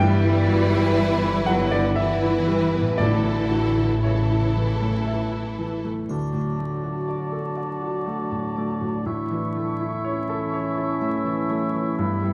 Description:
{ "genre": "cinematic, emotional film score for orchestra", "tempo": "60 BPM", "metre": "3/4", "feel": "rubato", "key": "D major", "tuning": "A4 = 441 Hz", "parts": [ { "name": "rich studio violin section", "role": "melody", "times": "0.0-5.9 s", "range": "A4 to B4", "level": "-33 LUFS", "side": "equal", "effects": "none" }, { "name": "warm studio violin section", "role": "second line", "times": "0.0-5.9 s", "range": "E4", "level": "-32 LUFS", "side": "equal", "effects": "none" }, { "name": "clear grand piano", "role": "accompaniment", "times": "0.0-12.3 s", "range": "D2 to G5", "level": "-28 LUFS", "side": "equal", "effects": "none" }, { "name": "rich studio viola section", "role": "accompaniment", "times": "0.0-5.9 s", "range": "E3", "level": "-31 LUFS", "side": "equal", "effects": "none" }, { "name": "concert harp", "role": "arpeggios", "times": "0.0-12.3 s", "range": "G2 to F#5", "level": "-33 LUFS", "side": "equal", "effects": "none" }, { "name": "rich studio cello section", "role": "bass", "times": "0.0-5.0 s", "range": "C#3 to G3", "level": "-31 LUFS", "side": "equal", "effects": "none" }, { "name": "warm studio double bass section", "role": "bass", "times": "0.0-5.9 s", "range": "G1 to A1", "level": "-28 LUFS", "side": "equal", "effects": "none" }, { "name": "timpani", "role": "percussion", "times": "3.0-4.5 s", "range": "A2", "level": "-30 LUFS", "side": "equal", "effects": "none" }, { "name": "clear clarinet", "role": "second line", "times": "6.1-12.3 s", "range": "E4 to F#4", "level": "-35 LUFS", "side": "equal", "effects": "none" }, { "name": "concert flute", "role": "second line", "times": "6.1-12.3 s", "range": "A5 to C#6", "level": "-37 LUFS", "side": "equal", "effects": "none" }, { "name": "warm oboe", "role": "second line", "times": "6.1-12.3 s", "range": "D5 to E5", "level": "-36 LUFS", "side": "equal", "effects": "none" }, { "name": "mellow French horn section", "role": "sustained chords", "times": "6.1-12.3 s", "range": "E3 to D4", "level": "-34 LUFS", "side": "equal", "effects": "none" }, { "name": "triangle", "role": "percussion", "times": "6.1-8.0 s", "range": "none", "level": "-61 LUFS", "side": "equal", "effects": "none" } ], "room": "moderate scoring stage reverb, RT60 1.9 s", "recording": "dark, warm production, vinyl crackle", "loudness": "-23 LUFS", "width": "mono", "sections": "0.0-6.1 A section; 6.1-12.3 B section", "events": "none", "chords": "0.0 Em/G; 3.0 A; 6.1 D; 9.1 A" }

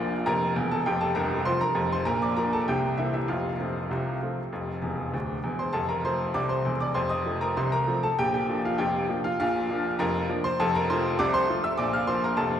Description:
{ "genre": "ragtime piano", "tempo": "99 BPM", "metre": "2/4", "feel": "straight", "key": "F major", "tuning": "A4 = 440 Hz", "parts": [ { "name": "bright baby grand piano", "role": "solo", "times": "0.0-12.6 s", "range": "C1 to F6", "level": "-24 LUFS", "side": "equal", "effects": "none" } ], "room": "wet cathedral reverb, RT60 4.7 s", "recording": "recorded in a church or concert hall, vinyl crackle", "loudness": "-24 LUFS", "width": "side -9 dB against mid", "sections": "0.0-5.7 A section; 5.7-12.6 A section", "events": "grand piano fill 4.8-5.7", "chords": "0.0 Bb; 0.9 F; 2.1 Bb; 2.7 C7; 3.3 F; 7.0 F7; 8.2 Bb; 10.6 F; 11.8 Bb" }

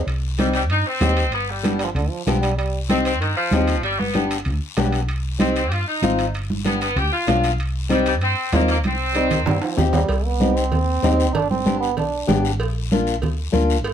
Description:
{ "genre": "latin, cumbia", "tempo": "192 BPM", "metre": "4/4", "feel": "straight", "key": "C harmonic minor", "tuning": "A4 = 437 Hz", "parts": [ { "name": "hollow-body short-scale fingered electric bass", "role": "bass", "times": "0.1-13.9 s", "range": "G1 to G2", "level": "-23 LUFS", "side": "equal", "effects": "none" }, { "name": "guiro", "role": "percussion", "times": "0.1-13.9 s", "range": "none", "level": "-35 LUFS", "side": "left 8 dB", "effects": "none" }, { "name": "timbales and cowbell", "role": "percussion", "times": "0.1-13.9 s", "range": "none", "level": "-30 LUFS", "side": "right 4 dB", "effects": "none" }, { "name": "bright saxophone section", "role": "melody", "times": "0.4-9.7 s", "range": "Eb3 to G4", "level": "-23 LUFS", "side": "left 1 dB", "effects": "none" }, { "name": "flamenco guitar", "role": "accompaniment", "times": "0.4-13.8 s", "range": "Bb3 to G4", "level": "-22 LUFS", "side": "left 3 dB", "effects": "none" }, { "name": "congas", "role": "percussion", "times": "0.4-13.7 s", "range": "none", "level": "-24 LUFS", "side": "right 2 dB", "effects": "none" }, { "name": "clear trombone", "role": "second line", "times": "1.8-2.8, 9.1-12.3 s", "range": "D3 to Eb4", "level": "-24 LUFS", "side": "right 6 dB", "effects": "none" } ], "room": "light reverb", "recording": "none", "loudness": "-18 LUFS", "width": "side -9 dB against mid", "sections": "0.1-10.1 A section; 10.1-13.9 B section", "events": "drum fill 8.8-10.1; trombone solo 10.1-13.9", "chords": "0.1 Cm; 1.3 G; 2.6 Cm; 3.8 G; 5.1 Cm; 6.3 G7; 7.6 Cm; 11.3 G; 12.6 Bb" }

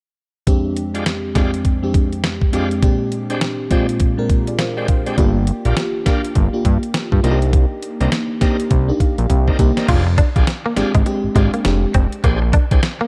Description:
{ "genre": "R&B, new jack swing", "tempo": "102 BPM", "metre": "4/4", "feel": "swing 61% on 16ths", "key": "F dorian", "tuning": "A4 = 440 Hz", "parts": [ { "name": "FM electric piano with soft pad layer", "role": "accompaniment", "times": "0.5-12.3 s", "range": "F2 to Bb5", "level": "-23 LUFS", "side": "equal", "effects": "chorus" }, { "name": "clean 12-bit digital drum machine", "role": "drums", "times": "0.5-13.0 s", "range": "crash cymbal, hi-hat, kick drum, snare drum", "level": "-20 LUFS", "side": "equal", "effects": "none" }, { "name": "bright tonewheel organ", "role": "stabs", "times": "0.9-12.8 s", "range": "Ab3 to C5", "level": "-30 LUFS", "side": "equal", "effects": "overdrive, fast rotary speaker" }, { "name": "fat analog bass", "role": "bass", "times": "5.2-12.8 s", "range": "F1 to G2", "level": "-19 LUFS", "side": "equal", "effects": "none" }, { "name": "direct-recorded clean electric guitar", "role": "riff", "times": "9.9-13.1 s", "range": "Ab3 to F4", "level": "-26 LUFS", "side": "equal", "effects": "subtle chorus" } ], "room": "light reverb, digital ambience", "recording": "dark, warm production", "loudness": "-17 LUFS", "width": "mono", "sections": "0.5-9.9 A section; 9.9-13.1 B section", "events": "FM electric piano fill 8.7-9.9; drum fill 9.3-9.9", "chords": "0.5 Fm69; 2.8 Bb13; 5.2 Gm7; 7.2 Cm9; 9.9 Fm69; 12.2 Bb13" }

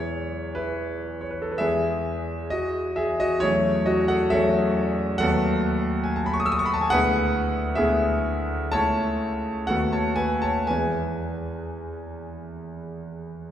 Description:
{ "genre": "classical, romantic nocturne for solo piano", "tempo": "56-72 BPM", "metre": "4/4", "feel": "rubato", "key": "E major", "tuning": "A4 = 440 Hz", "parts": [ { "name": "clear concert grand piano", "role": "solo", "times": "0.0-13.5 s", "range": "C#2 to E6", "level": "-22 LUFS", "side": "equal", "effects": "none" } ], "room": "wet scoring stage reverb, RT60 2.0 s", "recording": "heard from further back in the room", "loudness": "-22 LUFS", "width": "side -10 dB against mid", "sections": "0.0-13.5 A section", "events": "none", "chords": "0.0 E; 3.5 F#m7/E; 5.2 B7/D#; 6.9 E7/D; 8.8 A/C#; 9.7 B7/D#; 10.7 E" }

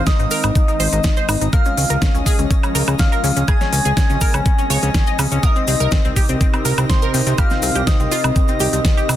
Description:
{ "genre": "progressive house", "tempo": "123 BPM", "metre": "4/4", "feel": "straight", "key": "unclear", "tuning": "A4 = 440 Hz", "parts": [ { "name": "soft octave-layered synth lead", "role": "melody", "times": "0.0-9.2 s", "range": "C5 to Ab5", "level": "-25 LUFS", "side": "left 3 dB", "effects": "chorus, sidechain pumping, dub echo" }, { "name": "airy breathy pad", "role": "sustained chords", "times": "0.0-9.2 s", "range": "C3 to Bb4", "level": "-26 LUFS", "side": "equal", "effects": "chorus, sidechain pumping" }, { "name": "tight sequenced synth", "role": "arpeggios", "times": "0.0-9.2 s", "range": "C4 to Eb5", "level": "-24 LUFS", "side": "equal", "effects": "chorus, sidechain pumping, dub echo" }, { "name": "fat analog bass", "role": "bass", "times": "0.0-9.2 s", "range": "Ab1 to Db2", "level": "-19 LUFS", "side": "equal", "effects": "tube saturation, sidechain pumping" }, { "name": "drifting glass-harmonics texture", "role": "texture", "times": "0.0-9.2 s", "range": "Eb5", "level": "-32 LUFS", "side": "left 1 dB", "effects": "chorus, built-in reverb, sidechain pumping" }, { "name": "soft synth bell", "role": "second line", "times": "0.1-9.2 s", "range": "C6 to Ab6", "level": "-28 LUFS", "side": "right 2 dB", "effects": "chorus, sidechain pumping, dub echo" }, { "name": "electronic kick drum", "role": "drums", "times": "0.1-8.9 s", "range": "none", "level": "-16 LUFS", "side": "equal", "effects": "none" }, { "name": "pop drum kit", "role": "drums", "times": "0.1-9.2 s", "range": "hi-hat, snare drum, woodblock", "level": "-23 LUFS", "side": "right 1 dB", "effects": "none" }, { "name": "maracas", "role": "percussion", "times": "0.1-9.2 s", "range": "none", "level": "-30 LUFS", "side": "left 1 dB", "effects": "none" } ], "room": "digital ambience", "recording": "dense, heavily limited modern master", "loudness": "-14 LUFS", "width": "side -12 dB against mid", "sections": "0.0-9.2 A section", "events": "none", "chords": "0.0 Ab; 1.5 Db; 5.4 Cm7" }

